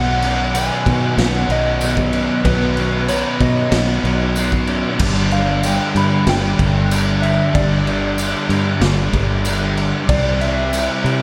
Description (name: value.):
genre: rock, shoegaze and dream pop.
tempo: 94 BPM.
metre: 4/4.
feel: straight.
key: unclear.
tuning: A4 = 440 Hz.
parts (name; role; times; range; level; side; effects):
soft struck synth lead; melody; 0.0-11.2 s; B4 to B5; -26 LUFS; equal; chorus, analog delay.
direct-recorded clean electric guitar; arpeggios; 0.0-5.0 s; F#3 to B4; -31 LUFS; equal; none.
overdriven electric guitar; riff; 0.0-11.2 s; G2 to C4; -26 LUFS; equal; none.
overdriven semi-hollow guitar; riff; 0.0-11.2 s; G2 to E4; -28 LUFS; equal; none.
thick fuzz guitar; riff; 0.0-11.2 s; G2 to C4; -26 LUFS; equal; distortion, lush chorus.
fingered electric bass; bass; 0.0-11.2 s; G1 to C3; -22 LUFS; equal; none.
raw garage drum kit; drums; 0.2-11.2 s; crash cymbal, kick drum, snare drum; -23 LUFS; equal; none.
tambourine; percussion; 0.5-10.9 s; none; -34 LUFS; equal; none.
room: moderate lush hall reverb, RT60 2.4 s.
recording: dreamy mix soaked in reverb.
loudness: -17 LUFS.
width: mono.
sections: 0.0-5.0 A section; 5.0-11.2 B section.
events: none.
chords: 0.0 Badd9; 5.0 G; 10.1 Cadd9.